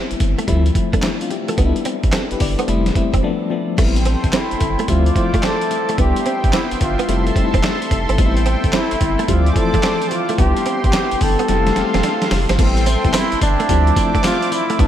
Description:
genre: R&B, new jack swing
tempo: 109 BPM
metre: 4/4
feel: swing 66% on 16ths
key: A minor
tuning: A4 = 440 Hz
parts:
  - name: FM electric piano with tremolo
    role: accompaniment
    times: 0.0-14.9 s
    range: E3 to D5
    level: -22 LUFS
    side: left 5 dB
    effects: none
  - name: direct-recorded clean electric guitar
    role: riff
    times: 0.0-14.9 s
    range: G3 to D4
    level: -25 LUFS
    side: right 4 dB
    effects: ensemble chorus
  - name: round analog bass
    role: bass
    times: 0.1-14.9 s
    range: E1 to D2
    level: -18 LUFS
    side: equal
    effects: none
  - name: dusty soul sampler-style drum kit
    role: drums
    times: 0.1-14.9 s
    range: crash cymbal, handclaps, hi-hat, kick drum, snare drum, tambourine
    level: -20 LUFS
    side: equal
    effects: overdrive
  - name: warm analog pad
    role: sustained chords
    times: 3.8-14.9 s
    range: B3 to D6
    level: -24 LUFS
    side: right 1 dB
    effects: chorus, tremolo
  - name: bright trombone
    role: melody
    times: 4.3-14.9 s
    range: C4 to A4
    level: -21 LUFS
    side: right 1 dB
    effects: tape echo
room: moderate cathedral reverb, RT60 5.3 s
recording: dreamy mix soaked in reverb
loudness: -15 LUFS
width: side -11 dB against mid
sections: 0.0-3.8 A section; 3.8-12.6 B section; 12.6-14.9 C section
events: break 3.2-3.8; drum fill 11.5-12.6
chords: 0.5 Dm9; 1.6 Cmaj7; 2.7 Fmaj7; 3.2 Bm7b5/F; 3.8 Am7; 4.9 Dm9; 6.0 Cmaj7; 7.1 Fmaj7; 8.2 Am7; 9.3 Dm9; 10.4 Cmaj7; 11.5 Fmaj7; 12.6 Am7; 13.7 Dm9

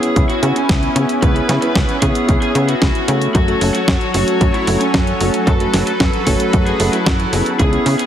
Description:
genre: italo disco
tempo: 113 BPM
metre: 4/4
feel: straight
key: F# minor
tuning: A4 = 439 Hz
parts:
  - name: lead guitar through a small cranked amp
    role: melody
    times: 0.0-8.1 s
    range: C#4 to B4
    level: -21 LUFS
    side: left 1 dB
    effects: overdrive, tape echo
  - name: warm analog pad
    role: sustained chords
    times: 0.0-8.1 s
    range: F#3 to C#5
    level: -21 LUFS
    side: equal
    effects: chorus, tremolo
  - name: bell-like tine electric piano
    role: stabs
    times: 0.0-8.0 s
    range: A3 to C#5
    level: -21 LUFS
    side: right 1 dB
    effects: none
  - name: clean 12-bit digital drum machine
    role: drums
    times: 0.0-8.1 s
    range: hi-hat, snare drum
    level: -21 LUFS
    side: equal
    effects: none
  - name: tight sequencer bass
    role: bass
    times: 0.2-8.0 s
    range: F#1 to C#3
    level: -20 LUFS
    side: equal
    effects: none
  - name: electronic kick drum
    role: drums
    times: 0.2-7.7 s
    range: none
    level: -17 LUFS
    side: equal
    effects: none
room: moderate lush hall reverb, RT60 2.0 s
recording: heavily compressed radio sound, multiband compression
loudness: -13 LUFS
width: side -10 dB against mid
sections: 0.0-8.1 A section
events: none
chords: 0.0 C#m7; 3.3 F#m

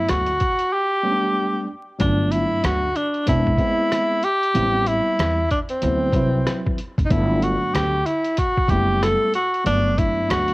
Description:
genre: hip hop, jazz-hop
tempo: 94 BPM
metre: 4/4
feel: swing 62% on 16ths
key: G major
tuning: A4 = 440 Hz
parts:
  - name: mellow tenor saxophone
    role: melody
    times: 0.0-10.5 s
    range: C4 to A4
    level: -20 LUFS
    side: equal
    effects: cassette tape
  - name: tine electric piano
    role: accompaniment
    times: 0.0-10.5 s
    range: F#3 to B4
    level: -25 LUFS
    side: equal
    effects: medium stereo tremolo, cassette tape
  - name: upright bass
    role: bass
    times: 0.1-10.5 s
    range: E1 to E2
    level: -23 LUFS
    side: equal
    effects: none
  - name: lo-fi sampler-style drum kit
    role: drums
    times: 0.1-10.5 s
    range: hi-hat, kick drum, rim click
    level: -24 LUFS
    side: equal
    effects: cassette tape
room: light reverb, studio reverb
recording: home recording on cassette, vinyl crackle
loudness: -18 LUFS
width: side -22 dB against mid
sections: 0.0-2.0 A section; 2.0-10.5 A section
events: silent gap 0.7-2.0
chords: 0.0 Gmaj9; 3.3 E7b13; 4.6 Am7; 5.8 D13; 7.1 Gmaj9

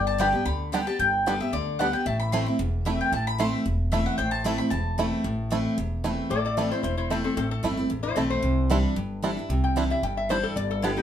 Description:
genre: bluegrass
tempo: 226 BPM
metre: 4/4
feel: swing 53% on 8ths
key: A minor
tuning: A4 = 443 Hz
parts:
  - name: mandolin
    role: melody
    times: 0.0-6.0 s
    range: D5 to C6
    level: -27 LUFS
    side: left 1 dB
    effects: none
  - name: lap resonator guitar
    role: second line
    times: 0.0-11.0 s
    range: C4 to G5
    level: -29 LUFS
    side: left 5 dB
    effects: none
  - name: picked steel-string acoustic guitar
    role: accompaniment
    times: 0.0-11.0 s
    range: E2 to G4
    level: -28 LUFS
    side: equal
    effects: none
  - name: upright bass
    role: bass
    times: 0.0-11.0 s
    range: E1 to D2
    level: -29 LUFS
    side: equal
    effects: none
  - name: bluegrass banjo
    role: melody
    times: 0.2-10.9 s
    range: A3 to G4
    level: -29 LUFS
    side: right 4 dB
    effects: none
room: moderate studio reverb, RT60 0.5 s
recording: minimal, uncompressed stereo recording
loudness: -23 LUFS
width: side -10 dB against mid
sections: 0.0-6.3 A section; 6.3-11.0 B section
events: resonator guitar played with a steel bar solo 6.3-11.0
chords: 0.0 G; 2.1 Am; 8.4 Cadd9

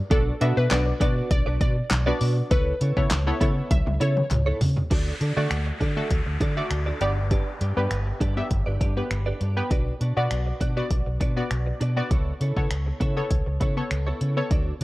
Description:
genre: dance-pop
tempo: 100 BPM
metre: 4/4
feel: straight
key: unclear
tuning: A4 = 440 Hz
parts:
  - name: glassy wavetable pluck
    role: melody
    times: 0.1-4.1 s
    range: A4 to E5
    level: -30 LUFS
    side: left 1 dB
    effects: chorus, tape echo
  - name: punchy chord stab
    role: accompaniment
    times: 0.1-14.5 s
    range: A3 to E5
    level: -29 LUFS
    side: left 1 dB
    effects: chorus, sidechain pumping
  - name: direct-recorded clean electric guitar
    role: riff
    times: 0.1-14.8 s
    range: B3 to D5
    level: -33 LUFS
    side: right 2 dB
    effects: ensemble chorus
  - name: vintage muted fingered electric bass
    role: bass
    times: 0.1-14.8 s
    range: G1 to D3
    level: -25 LUFS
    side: equal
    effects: sidechain pumping
  - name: deep house drum kit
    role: drums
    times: 0.1-14.8 s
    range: crash cymbal, finger snaps, handclaps, hi-hat, kick drum, snare drum, toms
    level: -25 LUFS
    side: equal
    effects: none
  - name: group handclap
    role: percussion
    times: 0.7-4.5 s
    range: none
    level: -40 LUFS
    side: left 3 dB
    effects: none
  - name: downlifter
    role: sound effects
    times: 4.9-9.7 s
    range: none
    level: -38 LUFS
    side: equal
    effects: none
room: light reverb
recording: worn, warbling old tape, cassette tape, warbly pitch drift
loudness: -22 LUFS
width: side -18 dB against mid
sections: 0.0-4.9 A section; 4.9-14.8 B section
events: drop 0.0-4.9; drum fill 3.7-4.9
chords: 0.1 Bm; 2.5 Aadd9/C#; 4.9 D; 7.0 G; 9.7 Bm; 12.1 Aadd9/C#

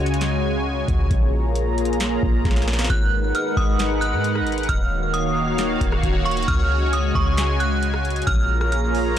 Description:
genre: hip hop, atmospheric cloud-rap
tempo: 134 BPM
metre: 4/4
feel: half-time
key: G# dorian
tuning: A4 = 439 Hz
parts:
  - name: sweeping resonant pad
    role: sustained chords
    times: 0.0-9.2 s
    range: C#3 to A#5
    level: -23 LUFS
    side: equal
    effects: chorus, sidechain pumping
  - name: clean 808-style bass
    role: bass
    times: 0.0-9.2 s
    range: D#1 to G#2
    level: -23 LUFS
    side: equal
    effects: none
  - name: booming analog drum machine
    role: drums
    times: 0.1-9.2 s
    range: hi-hat, kick drum, rim click, snare drum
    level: -24 LUFS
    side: equal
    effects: none
  - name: metallic FM bell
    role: melody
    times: 2.9-9.1 s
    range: C#6 to F#6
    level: -25 LUFS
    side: right 2 dB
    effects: chorus, low-pass filter, ping-pong delay
room: little or no reverb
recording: blown-out, overdriven recording, overdrive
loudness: -18 LUFS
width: side -10 dB against mid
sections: 0.0-2.9 A section; 2.9-9.2 B section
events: drum fill 2.5-2.9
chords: 0.0 C#sus4; 1.1 A#m7; 2.9 G#m7; 4.7 D#m7; 6.5 C#sus4; 8.3 A#m7

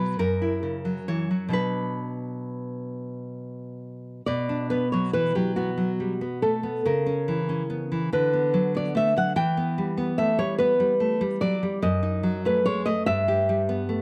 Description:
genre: romantic duo for nylon-string guitar and classical guitar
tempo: 43-50 BPM (dotted quarters)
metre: 6/8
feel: rubato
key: B minor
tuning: A4 = 440 Hz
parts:
  - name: nylon-string guitar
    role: accompaniment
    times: 0.0-14.0 s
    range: F#2 to C#5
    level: -28 LUFS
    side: equal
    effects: none
  - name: nylon-string guitar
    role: melody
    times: 4.3-14.0 s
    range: F#4 to G5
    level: -27 LUFS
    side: equal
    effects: none
room: light reverb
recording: close, detailed microphones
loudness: -25 LUFS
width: mono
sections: 0.0-4.3 A section; 4.3-14.0 A section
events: none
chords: 0.2 F#7; 1.5 Bm; 6.9 A#dim/C#; 8.1 Bm/D; 9.4 Em; 11.8 D#dim/F#; 13.1 Em/G

